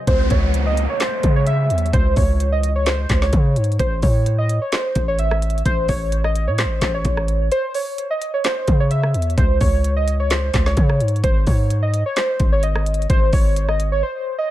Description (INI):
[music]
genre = hip hop, trap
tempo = 129 BPM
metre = 4/4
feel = half-time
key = unclear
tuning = A4 = 440 Hz
[part]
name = warbly lo-fi synth keys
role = melody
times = 0.0-14.5 s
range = B#4 to E5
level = -22 LUFS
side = right 1 dB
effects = chorus, low-pass filter, tape echo
[part]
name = hard-hitting 808-style bass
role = bass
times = 0.1-14.0 s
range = G#1 to C#3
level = -19 LUFS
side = equal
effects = none
[part]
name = trap drum kit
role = drums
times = 0.1-13.9 s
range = handclaps, hi-hat, kick drum, rim click, snare drum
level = -20 LUFS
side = equal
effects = none
[part]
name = downlifter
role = sound effects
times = 0.1-3.8 s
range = none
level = -28 LUFS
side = equal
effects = none
[sound]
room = little or no reverb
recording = none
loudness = -16 LUFS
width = side -14 dB against mid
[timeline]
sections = 0.1-14.5 A section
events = break 7.5-8.4, 14.0-14.5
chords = 0.1 N.C.; 3.8 A; 7.5 N.C.; 11.2 G#5